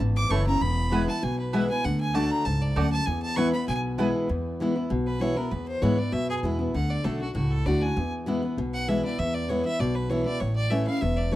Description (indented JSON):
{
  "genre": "bluegrass",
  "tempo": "196 BPM",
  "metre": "4/4",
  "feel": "straight",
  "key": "E mixolydian",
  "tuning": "A4 = 441 Hz",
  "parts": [
    { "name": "picked steel-string acoustic guitar", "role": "accompaniment", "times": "0.0-11.4 s", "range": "E2 to F#4", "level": "-26 LUFS", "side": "left 1 dB", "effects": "none" },
    { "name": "upright bass", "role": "bass", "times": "0.0-11.4 s", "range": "E1 to G#2", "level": "-28 LUFS", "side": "equal", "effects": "none" },
    { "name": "clear fiddle", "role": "melody", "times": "0.2-11.4 s", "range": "F#4 to D6", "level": "-31 LUFS", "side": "right 1 dB", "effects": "none" },
    { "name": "mandolin", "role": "stabs", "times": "0.3-4.1 s", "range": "A3 to A5", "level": "-34 LUFS", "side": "right 5 dB", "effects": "none" }
  ],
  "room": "small room ambience",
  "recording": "dry, close 1970s-style studio recording",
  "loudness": "-24 LUFS",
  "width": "side -15 dB against mid",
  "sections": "0.0-4.3 A section; 4.3-11.4 B section",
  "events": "fiddle solo 0.0-4.3",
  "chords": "0.0 A; 0.6 E; 1.8 D; 3.1 E; 6.7 D; 8.0 E; 10.4 A"
}